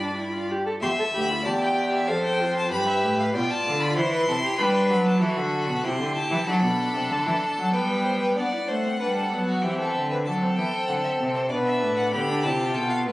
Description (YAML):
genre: classical, baroque-style fugue for string quartet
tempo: 96 BPM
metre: 3/4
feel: straight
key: C major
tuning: A4 = 440 Hz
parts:
  - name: clear violin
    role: melody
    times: 0.0-13.0 s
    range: C5 to C6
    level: -30 LUFS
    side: left 2 dB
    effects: none
  - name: rich violin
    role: second line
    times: 0.0-13.1 s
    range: F#4 to E5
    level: -27 LUFS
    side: equal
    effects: none
  - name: rich viola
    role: accompaniment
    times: 0.0-13.1 s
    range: B3 to A4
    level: -28 LUFS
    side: equal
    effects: none
  - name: clear cello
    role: bass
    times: 0.0-13.1 s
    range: D2 to B3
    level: -26 LUFS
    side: equal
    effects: none
room: moderate recital hall reverb, RT60 1.5 s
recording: recorded on a phone in the room, club reverb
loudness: -22 LUFS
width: side -18 dB against mid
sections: 0.8-8.4 A section; 8.4-13.1 B section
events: none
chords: 0.0 G; 0.8 C (rootless); 2.1 F; 2.7 G7; 4.0 C/E; 4.6 G; 5.8 C; 6.5 D; 7.7 G; 9.6 C/E; 10.3 F#dim; 11.5 Bm; 12.1 Bm7b5